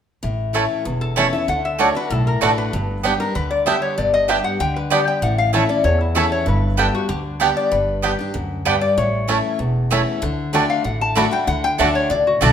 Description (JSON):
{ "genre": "bluegrass", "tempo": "192 BPM", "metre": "4/4", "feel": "straight", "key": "A mixolydian", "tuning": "A4 = 440 Hz", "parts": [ { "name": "picked steel-string acoustic guitar", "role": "accompaniment", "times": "0.2-12.5 s", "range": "E2 to G4", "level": "-23 LUFS", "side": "left 3 dB", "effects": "none" }, { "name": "upright bass", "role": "bass", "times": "0.2-12.5 s", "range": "E1 to E2", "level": "-23 LUFS", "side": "right 1 dB", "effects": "none" }, { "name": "mandolin", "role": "stabs", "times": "0.5-12.5 s", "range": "A3 to A5", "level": "-22 LUFS", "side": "right 7 dB", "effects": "none" }, { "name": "bluegrass banjo", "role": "melody", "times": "0.6-12.5 s", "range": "A3 to G4", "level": "-25 LUFS", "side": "right 2 dB", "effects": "none" }, { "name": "lap resonator guitar", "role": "melody", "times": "1.0-12.5 s", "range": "E4 to B5", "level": "-21 LUFS", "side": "left 3 dB", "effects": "none" } ], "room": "moderate large studio reverb, RT60 1.5 s", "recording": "minimal, uncompressed stereo recording", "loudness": "-16 LUFS", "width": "side -8 dB against mid", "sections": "0.2-10.2 A section; 10.2-12.5 B section", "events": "none", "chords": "0.2 A; 1.5 D; 2.7 G; 5.2 A; 6.5 G; 9.0 A; 10.2 D", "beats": "| 0.24 0.55 0.86 1.17 | 1.48 1.80 2.11 2.42 | 2.73 3.04 3.35 3.67 | 3.98 4.29 4.60 4.91 | 5.22 5.54 5.85 6.16 | 6.47 6.78 7.09 7.41 | 7.72 8.03 8.35 8.66 | 8.97 9.29 9.60 9.91 | 10.22 10.54 10.85 11.16 | 11.48 11.79 12.11 12.42" }